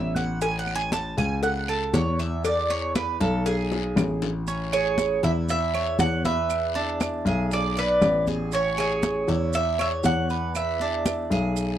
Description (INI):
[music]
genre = latin, Cuban son and guajira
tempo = 118 BPM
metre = 4/4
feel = straight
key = A major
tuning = A4 = 441 Hz
[part]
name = Cuban tres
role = arpeggios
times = 0.0-11.8 s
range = C#4 to A5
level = -28 LUFS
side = right 1 dB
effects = none
[part]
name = dark baby grand piano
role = bass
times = 0.0-11.8 s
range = A1 to E2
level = -26 LUFS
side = left 1 dB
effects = none
[part]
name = congas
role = percussion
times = 0.2-11.8 s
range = none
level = -30 LUFS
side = left 1 dB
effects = none
[part]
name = cowbell and bongos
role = percussion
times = 0.2-4.5 s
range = none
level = -30 LUFS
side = left 4 dB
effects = none
[part]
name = guiro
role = percussion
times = 0.2-11.8 s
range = none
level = -39 LUFS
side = left 14 dB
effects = none
[part]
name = maracas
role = percussion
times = 0.2-11.8 s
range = none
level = -40 LUFS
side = right 15 dB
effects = none
[part]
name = claves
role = percussion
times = 0.7-11.3 s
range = none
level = -36 LUFS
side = right 15 dB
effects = none
[part]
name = Cuban tres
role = melody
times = 4.7-11.8 s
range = B4 to F#5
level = -26 LUFS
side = right 4 dB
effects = none
[sound]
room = little or no reverb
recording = dry, close 1970s-style studio recording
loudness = -22 LUFS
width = side -11 dB against mid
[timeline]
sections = 0.0-4.5 A section; 4.5-11.8 B section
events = Cuban tres solo 0.0-4.5; drum fill 3.7-4.5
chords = 0.4 A; 2.4 E; 4.5 Amaj7; 6.5 E7; 8.5 Amaj7; 10.6 E7